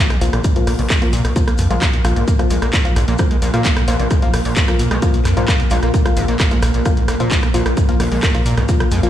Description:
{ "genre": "driving peak-time techno", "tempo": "131 BPM", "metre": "4/4", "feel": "straight", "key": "unclear", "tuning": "A4 = 440 Hz", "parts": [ { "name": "overdriven acid bass", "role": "riff", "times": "0.0-9.1 s", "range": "Ab2 to Bb3", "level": "-26 LUFS", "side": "equal", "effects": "cassette tape, sidechain pumping, digital delay" }, { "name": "metallic inharmonic drone", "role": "drone", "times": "0.3-9.1 s", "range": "Bb2 to Bb3", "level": "-24 LUFS", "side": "equal", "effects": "chorus, built-in reverb, sidechain pumping" }, { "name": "impact", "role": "sound effects", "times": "0.0-1.4 s", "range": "none", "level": "-30 LUFS", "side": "equal", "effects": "none" }, { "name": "modern studio drum kit", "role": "drums", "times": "0.1-9.0 s", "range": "hi-hat, shaker, snare drum", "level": "-35 LUFS", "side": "left 4 dB", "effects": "none" }, { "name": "punchy analog drum machine", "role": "drums", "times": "0.1-9.1 s", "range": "handclaps, hi-hat, rim click", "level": "-22 LUFS", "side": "equal", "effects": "none" }, { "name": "filtered dub chord stab", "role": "stabs", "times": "0.2-9.1 s", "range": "F3 to F4", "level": "-23 LUFS", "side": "left 3 dB", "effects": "chorus, sidechain pumping, digital delay" }, { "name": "gritty driven synth bass", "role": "bass", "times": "0.2-9.1 s", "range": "Ab1 to Bb2", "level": "-18 LUFS", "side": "equal", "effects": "sidechain pumping" }, { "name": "electronic kick drum", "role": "drums", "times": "0.4-8.8 s", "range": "none", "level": "-16 LUFS", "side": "equal", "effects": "none" } ], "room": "light reverb", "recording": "played on a big sound system in a bare room, stone room reverb", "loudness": "-14 LUFS", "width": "side -11 dB against mid", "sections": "0.0-9.1 A section", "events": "impact 0.0-1.4", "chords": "0.0 Bb5" }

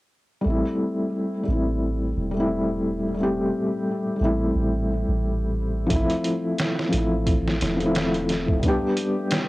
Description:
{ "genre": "trip hop", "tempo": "88 BPM", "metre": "4/4", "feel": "swing 57% on 16ths", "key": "A minor", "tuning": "A4 = 439 Hz", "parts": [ { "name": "felt-muted upright piano", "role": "accompaniment", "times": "0.4-9.5 s", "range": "F3 to G4", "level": "-23 LUFS", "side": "left 1 dB", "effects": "tremolo, cassette tape, tape echo" }, { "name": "soft 808-style bass", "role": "bass", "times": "0.5-8.6 s", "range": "E1 to A1", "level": "-27 LUFS", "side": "right 1 dB", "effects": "none" }, { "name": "trip hop sampler-style drum kit", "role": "drums", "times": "5.9-9.5 s", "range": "hi-hat, kick drum, snare drum", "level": "-25 LUFS", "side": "right 1 dB", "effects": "cassette tape" } ], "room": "little or no reverb", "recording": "home recording on cassette", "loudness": "-21 LUFS", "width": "side -19 dB against mid", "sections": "0.5-9.5 A section", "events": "none", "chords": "0.5 Am7; 5.9 Fmaj7/A; 8.6 G" }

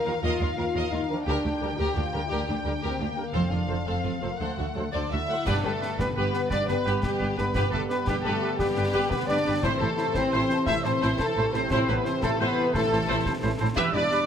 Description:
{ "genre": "cinematic, heroic adventure film score", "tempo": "116 BPM (dotted quarters)", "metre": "12/8", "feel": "straight", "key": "G major from 5.5 s", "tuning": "A4 = 444 Hz", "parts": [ { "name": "dark symphonic violin section", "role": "melody", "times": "0.0-14.3 s", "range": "G4 to G5", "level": "-33 LUFS", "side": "left 4 dB", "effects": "none" }, { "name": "mellow French horn section", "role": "sustained chords", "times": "0.0-14.3 s", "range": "G3 to Bb4", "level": "-31 LUFS", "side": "left 2 dB", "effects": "none" }, { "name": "concert harp", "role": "arpeggios", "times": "0.0-14.3 s", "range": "E2 to A5", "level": "-36 LUFS", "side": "left 9 dB", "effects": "none" }, { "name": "warm symphonic violin section", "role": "second line", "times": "0.1-14.3 s", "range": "D4 to E5", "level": "-36 LUFS", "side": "left 2 dB", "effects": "none" }, { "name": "warm studio viola section", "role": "accompaniment", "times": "0.1-14.0 s", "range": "A3 to C5", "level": "-34 LUFS", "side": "right 1 dB", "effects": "none" }, { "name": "warm trombone section", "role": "sustained chords", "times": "0.1-14.3 s", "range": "C3 to B3", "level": "-35 LUFS", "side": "right 4 dB", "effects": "none" }, { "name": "dark trumpet section", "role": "stabs", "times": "0.1-14.3 s", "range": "G4 to E5", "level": "-32 LUFS", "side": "right 2 dB", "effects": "none" }, { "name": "rich symphonic double bass section", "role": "bass", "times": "0.1-14.0 s", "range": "E1 to Eb2", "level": "-34 LUFS", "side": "right 2 dB", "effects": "none" }, { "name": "warm symphonic cello section", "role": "bass", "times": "0.1-14.0 s", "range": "D2 to A2", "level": "-33 LUFS", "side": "right 2 dB", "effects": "none" }, { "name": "timpani", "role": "percussion", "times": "3.3-3.8 s", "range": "F2", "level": "-33 LUFS", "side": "equal", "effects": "none" }, { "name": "clear oboe", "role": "second line", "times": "5.5-14.2 s", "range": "B4 to C5", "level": "-35 LUFS", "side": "right 1 dB", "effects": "none" }, { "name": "mellow hollow flute section", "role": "second line", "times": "5.5-14.2 s", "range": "G5 to B5", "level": "-38 LUFS", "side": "equal", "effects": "none" }, { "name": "warm clarinet", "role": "second line", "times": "5.5-14.2 s", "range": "E4 to G4", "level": "-36 LUFS", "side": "left 2 dB", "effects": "none" }, { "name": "concert snare drum, clash cymbals and concert bass drum", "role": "drums", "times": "5.5-14.3 s", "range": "none", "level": "-34 LUFS", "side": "equal", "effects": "none" } ], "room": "moderate scoring stage reverb, RT60 1.8 s", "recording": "none", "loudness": "-24 LUFS", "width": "side -8 dB against mid", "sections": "0.0-5.5 A section; 5.5-14.3 B section", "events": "none", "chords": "0.0 Ebsus2; 1.3 Gm/D; 3.3 F; 4.4 D7; 5.5 G; 9.6 Am" }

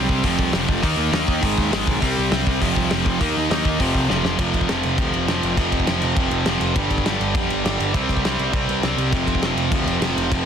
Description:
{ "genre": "punk rock", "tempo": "202 BPM", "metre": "4/4", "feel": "straight", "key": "unclear", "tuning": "A4 = 440 Hz", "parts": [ { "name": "crunchy overdriven guitar", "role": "riff", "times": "0.0-10.5 s", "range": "F2 to Eb4", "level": "-24 LUFS", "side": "right 11 dB", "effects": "none" }, { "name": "fuzz guitar", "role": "riff", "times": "0.0-4.4, 9.1-10.5 s", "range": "F2 to Eb4", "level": "-27 LUFS", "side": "equal", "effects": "distortion" }, { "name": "tight distorted guitar", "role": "riff", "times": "0.0-10.5 s", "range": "F2 to Eb4", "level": "-23 LUFS", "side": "left 12 dB", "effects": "distortion" }, { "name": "fuzz picked electric bass", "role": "bass", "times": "0.0-10.4 s", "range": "F1 to F2", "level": "-26 LUFS", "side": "equal", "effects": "overdrive" }, { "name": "loose indie drum kit", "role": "drums", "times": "0.1-10.4 s", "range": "crash cymbal, hi-hat, kick drum, snare drum", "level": "-24 LUFS", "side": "equal", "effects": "none" } ], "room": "light reverb", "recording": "dense, heavily limited modern master", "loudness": "-18 LUFS", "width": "side -8 dB against mid", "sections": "0.0-4.4 A section; 4.4-10.5 B section", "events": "drum fill 4.1", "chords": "0.2 F5; 0.8 Eb5; 1.4 Ab5; 2.0 C5; 2.6 F5; 3.2 Eb5; 3.8 F5; 6.8 G5; 7.9 C5; 9.1 F5" }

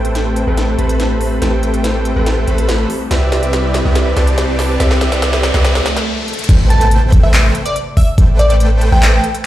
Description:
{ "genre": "future bass", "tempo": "142 BPM", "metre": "4/4", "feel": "half-time", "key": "unclear", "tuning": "A4 = 440 Hz", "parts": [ { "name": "airy breathy pad", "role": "sustained chords", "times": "0.0-6.0 s", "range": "C3 to B4", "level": "-23 LUFS", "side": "equal", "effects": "chorus, sidechain pumping" }, { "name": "supersaw chords", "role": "riff", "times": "0.0-9.2 s", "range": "A3 to B5", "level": "-19 LUFS", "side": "right 1 dB", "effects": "sidechain pumping, low-pass filter, digital delay" }, { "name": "long sustained 808-style bass", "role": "bass", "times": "0.0-9.2 s", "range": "A1 to C2", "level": "-14 LUFS", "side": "equal", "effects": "sidechain pumping" }, { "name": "trap drum kit", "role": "drums", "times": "0.0-9.4 s", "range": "crash cymbal, handclaps, hi-hat, snare drum", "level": "-20 LUFS", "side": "equal", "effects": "high-pass filter on hats, studio reverb, high-pass filter on snare, high-pass filter on cymbals" }, { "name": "riser, swell and impact", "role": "sound effects", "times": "2.6-8.2 s", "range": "none", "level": "-24 LUFS", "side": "equal", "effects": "none" }, { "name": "electronic kick drum", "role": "drums", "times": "6.5-8.3 s", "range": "none", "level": "-9 LUFS", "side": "equal", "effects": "studio reverb" }, { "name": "plucky unison lead", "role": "melody", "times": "6.7-9.3 s", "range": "D5 to A5", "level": "-18 LUFS", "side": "equal", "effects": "sidechain pumping, dub echo" } ], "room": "light reverb", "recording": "played on a big sound system in a bare room, large studio reverb", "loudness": "-11 LUFS", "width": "side -14 dB against mid", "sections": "0.0-6.5 A section; 6.5-9.5 B section", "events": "build-up 0.0-6.5; drum fill 0.0-6.1, 6.3; filter sweep on analog synth pad 0.0-6.5; riser 2.6-6.5; swell 5.6-6.5; stop 6.1-6.5; drop 6.5-9.5; impact 6.5-8.2", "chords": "0.0 Am7; 2.9 Cmaj7; 6.3 N.C.; 6.5 Am7" }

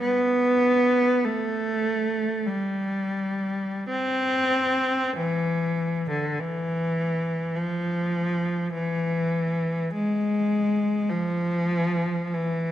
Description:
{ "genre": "classical, free, expressive piece for unaccompanied cello", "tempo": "40-52 BPM", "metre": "4/4", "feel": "rubato", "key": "unclear", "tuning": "A4 = 441 Hz", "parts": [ { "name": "warm cello", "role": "solo", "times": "0.0-12.7 s", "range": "D3 to C4", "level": "-23 LUFS", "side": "equal", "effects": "none" } ], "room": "moderate recital hall reverb, RT60 1.7 s", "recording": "none", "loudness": "-23 LUFS", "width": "side -12 dB against mid", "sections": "0.0-12.7 A section", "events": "none", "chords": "none" }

